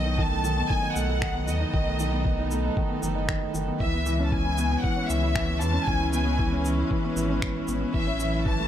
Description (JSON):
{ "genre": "piano and strings electronica", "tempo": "116 BPM", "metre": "4/4", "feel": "straight", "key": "unclear", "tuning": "A4 = 440 Hz", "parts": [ { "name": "clear symphonic violin section", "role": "melody", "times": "0.0-8.7 s", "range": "D#5 to A5", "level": "-30 LUFS", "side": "left 2 dB", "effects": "none" }, { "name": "clear studio string section", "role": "sustained chords", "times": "0.0-8.7 s", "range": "F#3 to B4", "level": "-35 LUFS", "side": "left 1 dB", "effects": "sidechain pumping" }, { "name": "felt-muted upright piano", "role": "riff", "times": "0.0-8.7 s", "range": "D#3 to E4", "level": "-28 LUFS", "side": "right 1 dB", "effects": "ping-pong delay" }, { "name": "warm sub bass", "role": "bass", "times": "0.0-8.7 s", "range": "F#1 to E2", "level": "-28 LUFS", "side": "equal", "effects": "tube saturation, sidechain pumping" }, { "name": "electronic kick drum", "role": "drums", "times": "0.2-8.6 s", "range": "none", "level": "-28 LUFS", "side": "equal", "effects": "none" }, { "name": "electronic shaker and finger snaps", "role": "drums", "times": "0.4-8.3 s", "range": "none", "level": "-35 LUFS", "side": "equal", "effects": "none" } ], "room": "light reverb, small room ambience", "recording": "none", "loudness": "-23 LUFS", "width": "side -10 dB against mid", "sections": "0.0-8.7 A section", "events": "none", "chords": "0.0 B7; 3.8 C#m7; 7.9 A6" }